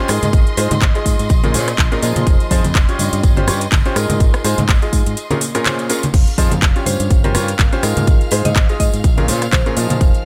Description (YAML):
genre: piano house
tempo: 124 BPM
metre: 4/4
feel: swing 56% on 16ths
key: Ab major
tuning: A4 = 442 Hz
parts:
  - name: warm studio violin section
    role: sustained chords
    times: 0.0-10.2 s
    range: Eb5 to F6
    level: -31 LUFS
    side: equal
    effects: sidechain pumping
  - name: bright grand piano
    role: riff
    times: 0.0-10.2 s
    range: Bb2 to Eb5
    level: -23 LUFS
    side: equal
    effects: sidechain pumping, digital delay
  - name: modern bright fingered electric bass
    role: bass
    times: 0.1-10.1 s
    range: F1 to Bb2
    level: -22 LUFS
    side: equal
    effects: sidechain pumping
  - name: house drum kit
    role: drums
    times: 0.1-10.2 s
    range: crash cymbal, handclaps, hi-hat, rim click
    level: -24 LUFS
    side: equal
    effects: none
  - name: tambourine and congas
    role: percussion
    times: 0.1-10.2 s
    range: none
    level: -27 LUFS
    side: equal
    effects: none
  - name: electronic kick drum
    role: drums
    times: 0.3-10.1 s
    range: none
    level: -16 LUFS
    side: equal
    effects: none
  - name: mallet-like synth pluck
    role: melody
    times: 0.6-0.7, 6.9-10.1 s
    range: Bb4 to Eb5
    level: -28 LUFS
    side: equal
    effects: chorus, digital delay
room: little or no reverb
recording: none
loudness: -15 LUFS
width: mono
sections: 0.0-10.2 A section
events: break 5.2-6.1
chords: 0.1 Ab6; 1.3 Bbm7; 2.3 Fm7; 3.0 Eb13/G; 4.0 Ab6; 5.2 Bbm7; 6.1 Fm7; 6.9 G7(b5, no3); 7.8 Ab5; 9.0 Bbm7